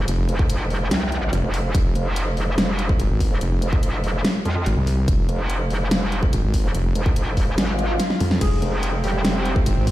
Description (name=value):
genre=heavy wobble dubstep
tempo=144 BPM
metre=4/4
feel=half-time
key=F minor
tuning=A4 = 439 Hz
part: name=metallic wobble bass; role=bass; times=0.0-9.6 s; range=F1 to F2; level=-22 LUFS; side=equal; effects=chorus, overdrive
part: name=wobble bass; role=bass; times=0.1-9.9 s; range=F1 to F2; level=-20 LUFS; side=equal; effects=chorus, overdrive
part: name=dubstep drum kit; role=drums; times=0.1-9.9 s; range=crash cymbal, hi-hat, snare drum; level=-25 LUFS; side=equal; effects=none
part: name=electronic kick drum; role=drums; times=0.4-9.9 s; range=none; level=-20 LUFS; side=equal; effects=none
part: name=swell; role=sound effects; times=7.7-8.4 s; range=none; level=-29 LUFS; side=left 2 dB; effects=none
part: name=felt-muted upright piano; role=melody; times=8.4-9.6 s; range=G3 to Ab4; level=-28 LUFS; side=left 1 dB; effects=tape echo
part: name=supersaw pad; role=sustained chords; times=8.7-9.9 s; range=C3 to C4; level=-29 LUFS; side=right 1 dB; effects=sidechain pumping
room=little or no reverb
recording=played on a big sound system in a bare room, stone room reverb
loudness=-19 LUFS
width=side -15 dB against mid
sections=0.0-9.9 A section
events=swell 7.7-8.4; drum fill 8.0-8.4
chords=0.0 Fm